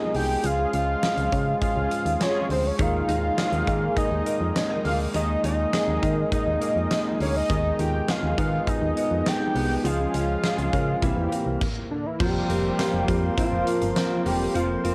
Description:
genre	1980s-style pop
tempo	102 BPM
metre	4/4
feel	straight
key	Eb mixolydian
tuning	A4 = 439 Hz
part	fat analog lead	melody	0.0-14.9 s	D4 to G5	-30 LUFS	equal	plate reverb
part	mellow tine electric piano	accompaniment	0.0-14.9 s	F3 to C5	-31 LUFS	equal	analog chorus, cassette tape
part	mellow accordion	sustained chords	0.0-14.9 s	Bb2 to C6	-37 LUFS	equal	cassette tape, plate reverb
part	solid FM bass	bass	0.1-14.9 s	E1 to Eb3	-30 LUFS	equal	none
part	huge arena drum kit	drums	0.1-14.9 s	crash cymbal, hi-hat, kick drum, snare drum, tambourine	-32 LUFS	equal	none
part	mellow synth brass	stabs	0.6-2.5, 10.0-11.3 s	C4 to Ab4	-38 LUFS	equal	none
part	direct-recorded clean electric guitar	riff	2.8-14.9 s	Eb3 to Ab4	-35 LUFS	equal	ensemble chorus, cassette tape, tape echo
room	moderate booth ambience, RT60 0.2 s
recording	home recording on cassette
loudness	-24 LUFS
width	mono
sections	0.0-12.2 A section; 12.2-14.9 A section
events	band accent 0.4-2.8, 9.8-12.2; stop 11.6-12.2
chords	0.4 Db; 2.8 Ebsus4; 7.5 Abm/Eb; 9.8 Db; 11.0 C7; 12.2 Fsus4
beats	| 0.44 1.03 1.61 2.20 | 2.79 3.38 3.97 4.56 | 5.14 5.73 6.32 6.91 | 7.50 8.09 8.67 9.26 | 9.85 10.44 11.03 11.62 | 12.20 12.79 13.38 13.97 | 14.56

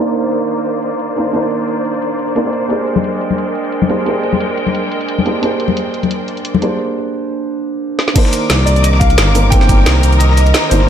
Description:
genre	liquid drum and bass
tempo	176 BPM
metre	4/4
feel	swing 54% on 16ths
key	C minor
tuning	A4 = 440 Hz
part	felt-muted upright piano	accompaniment	0.0-10.9 s	Bb3 to C5	-18 LUFS	right 2 dB	vintage 12-bit sampler grit, ping-pong delay
part	rich symphonic string section	sustained chords	0.0-10.9 s	Eb3 to D6	-20 LUFS	left 1 dB	sidechain pumping, low-pass filter
part	drum and bass drum kit	drums	0.1-10.8 s	crash cymbal, hi-hat, shaker, snare drum	-18 LUFS	equal	overdrive, low-pass filter on hats, low-pass filter on perc, low-pass filter on snare, low-pass filter on cymbals
part	congas	percussion	3.0-6.6 s	none	-18 LUFS	left 6 dB	none
part	dusty soul sampler-style drum kit	drums	8.2-10.9 s	hi-hat, snare drum	-25 LUFS	equal	none
part	electronic kick drum	drums	8.2-9.8 s	none	-12 LUFS	equal	overdrive
part	smooth gliding synth bass	bass	8.5-10.9 s	G1 to C2	-11 LUFS	equal	tube saturation
part	warm concert grand piano	melody	8.7-10.9 s	C5 to G5	-18 LUFS	equal	analog chorus, ping-pong delay
room	light reverb, small room reverb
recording	low-pass filter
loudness	-12 LUFS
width	side -9 dB against mid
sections	0.0-8.2 A section; 8.2-10.9 B section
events	filter sweep on string section 0.0-8.2; filter sweep 0.0-8.2; break 6.8-8.2; drum fill 8.0; drop 8.2-10.9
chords	0.0 Cm9; 2.7 Bb13; 8.2 Cm9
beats	0.32 0.66 1.00 | 1.34 1.68 2.02 2.36 | 2.70 3.04 3.38 3.73 | 4.07 4.41 4.75 5.09 | 5.43 5.77 6.11 6.45 | 6.79 7.13 7.47 7.82 | 8.16 8.50 8.84 9.18 | 9.52 9.86 10.20 10.54 | 10.88

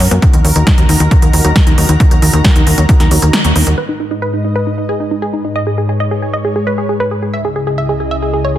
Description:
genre	uplifting trance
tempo	135 BPM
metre	4/4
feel	straight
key	G# minor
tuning	A4 = 440 Hz
part	lush unison pad	sustained chords	0.0-8.6 s	C#2 to A#5	-18 LUFS	equal	chorus, sidechain pumping
part	analog pluck	arpeggios	0.0-3.8 s	D#3 to A#3	-20 LUFS	left 2 dB	chorus, sidechain pumping, tape echo
part	tight sequencer bass	bass	0.0-3.7 s	D#2 to F#2	-12 LUFS	equal	sidechain pumping
part	big-room dance drum kit	drums	0.0-3.8 s	hi-hat, snare drum	-16 LUFS	equal	overdrive
part	electronic kick drum	drums	0.2-3.0 s	none	-10 LUFS	equal	overdrive
part	wide unison pluck	melody	3.8-8.6 s	D#4 to E5	-17 LUFS	right 1 dB	cassette tape, sidechain pumping, tape echo
room	light reverb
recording	dense, heavily limited modern master, faint mains hum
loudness	-10 LUFS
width	side -12 dB against mid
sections	0.0-3.8 A section; 3.8-8.6 B section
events	kick drops out 3.3-3.8; band accent 3.3; filter sweep on synth pluck 3.8-8.6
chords	0.2 D#m; 3.8 G#m; 7.3 C#madd9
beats	| 0.22 0.67 1.11 1.56 | 2.00 2.44 2.89 3.33 | 3.78 4.22 4.67 5.11 | 5.56 6.00 6.45 6.89 | 7.33 7.78 8.22

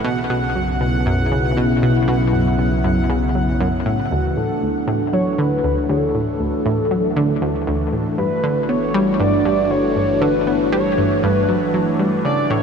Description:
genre	ambient, sequencer-driven space music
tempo	118 BPM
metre	4/4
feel	straight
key	D major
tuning	A4 = 440 Hz
part	phased analog pad	sustained chords	0.0-12.6 s	C#3 to F#4	-21 LUFS	equal	phaser, chorus
part	analog pluck	riff	0.0-12.6 s	D2 to B3	-20 LUFS	equal	chorus, ping-pong delay
part	fat analog bass	bass	0.0-12.6 s	G1 to D2	-25 LUFS	equal	tube saturation
part	bubbling stepped-filter texture	texture	0.0-4.1 s	F#5	-28 LUFS	right 1 dB	chorus, built-in reverb
part	pulse-width lead	melody	4.1-12.6 s	F#4 to D5	-22 LUFS	left 1 dB	chorus, ping-pong delay
room	wet huge ambient reverb, RT60 7.6 s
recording	none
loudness	-16 LUFS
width	side -6 dB against mid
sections	0.0-4.1 A section; 4.1-12.6 B section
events	fade-in on analog synth bass 4.1-12.6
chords	0.0 Bsus2; 4.1 D; 8.2 Gmaj7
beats	| 0.04 0.55 1.06 1.57 | 2.08 2.59 3.10 3.60 | 4.11 4.62 5.13 5.64 | 6.15 6.66 7.16 7.67 | 8.18 8.69 9.20 9.71 | 10.21 10.72 11.23 11.74 | 12.25

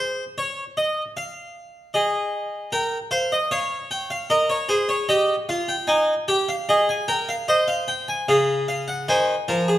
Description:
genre	classical, baroque-style 3-part fugue for harpsichord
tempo	76 BPM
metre	4/4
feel	straight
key	Db major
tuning	A4 = 435 Hz
part	harpsichord	solo	0.0-9.8 s	Db3 to Ab5	-20 LUFS	equal	none
room	moderate recital hall reverb, RT60 1.5 s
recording	minimal, uncompressed stereo recording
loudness	-20 LUFS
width	side -13 dB against mid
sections	0.0-9.8 A section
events	none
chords	0.0 N.C.; 1.9 Ab; 3.5 Db; 5.1 Eb; 6.7 Ab; 8.3 Db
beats	0.37 1.16 | 1.94 2.72 3.51 4.30 | 5.10 5.89 6.69 7.49 | 8.29 9.09

